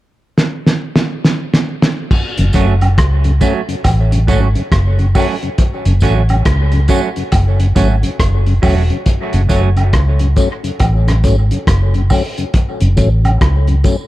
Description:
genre	dub reggae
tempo	69 BPM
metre	4/4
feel	swing 63% on 16ths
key	F# minor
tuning	A4 = 440 Hz
part	cloth-damped thuddy drum kit	drums	0.4-14.1 s	crash cymbal, hi-hat, kick drum, rim click, snare drum	-15 LUFS	equal	none
part	mellow tonewheel organ	accompaniment	2.4-14.0 s	F#2 to C#4	-21 LUFS	left 3 dB	overdrive, chorus vibrato, slow rotary speaker, dub echo
part	vintage muted fingered electric bass	bass	2.4-13.8 s	E1 to C#2	-12 LUFS	equal	none
part	semi-hollow electric guitar	accompaniment	2.5-9.7 s	F#3 to F#4	-21 LUFS	right 6 dB	lush chorus, dub echo
part	tambourine and woodblock	percussion	2.5-14.1 s	none	-26 LUFS	right 2 dB	dub echo
room	small room ambience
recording	dark, warm production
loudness	-11 LUFS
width	side -16 dB against mid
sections	0.0-2.1 A section; 2.1-14.1 B section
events	drum fill 0.4-2.1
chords	0.0 N.C.; 2.1 F#m

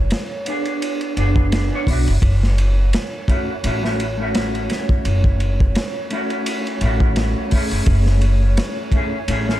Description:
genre	trip hop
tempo	85 BPM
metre	4/4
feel	swing 56% on 16ths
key	F# minor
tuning	A4 = 441 Hz
part	warbly tape-like pad	sustained chords	0.0-9.6 s	C#5	-31 LUFS	right 2 dB	chorus, built-in reverb, vintage 12-bit sampler grit
part	upright bass	bass	0.0-9.6 s	F#1 to B1	-18 LUFS	equal	none
part	crunchy breakbeat drum kit	drums	0.1-9.6 s	hi-hat, kick drum, ride cymbal, snare drum	-21 LUFS	equal	none
part	mellow electric guitar	accompaniment	0.5-9.6 s	A3 to C#5	-24 LUFS	equal	harmonic tremolo, tape echo
room	studio ambience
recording	none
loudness	-16 LUFS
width	side -14 dB against mid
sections	0.0-9.6 A section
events	none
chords	0.0 E7/F# (rootless); 2.2 F#m7

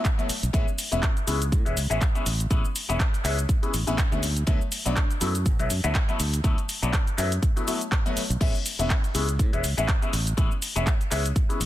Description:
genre	filtered disco house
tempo	122 BPM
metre	4/4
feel	swing 56% on 16ths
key	A major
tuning	A4 = 440 Hz
part	electronic kick drum	drums	0.0-11.5 s	none	-24 LUFS	equal	none
part	punchy analog drum machine	drums	0.1-11.7 s	crash cymbal, handclaps, hi-hat, shaker	-30 LUFS	equal	sidechain pumping on hats, sidechain pumping on perc, sidechain pumping on cymbals
part	bright grand piano	accompaniment	0.2-11.6 s	F#3 to F#4	-29 LUFS	left 3 dB	phaser, sidechain pumping
part	fingered electric bass	bass	0.3-11.7 s	E1 to A2	-27 LUFS	equal	sidechain pumping
room	digital ambience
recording	dense, heavily limited modern master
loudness	-22 LUFS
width	side -14 dB against mid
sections	0.0-11.7 A section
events	none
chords	0.0 D6 (rootless); 0.5 Amaj7; 4.2 D6; 8.4 Amaj7

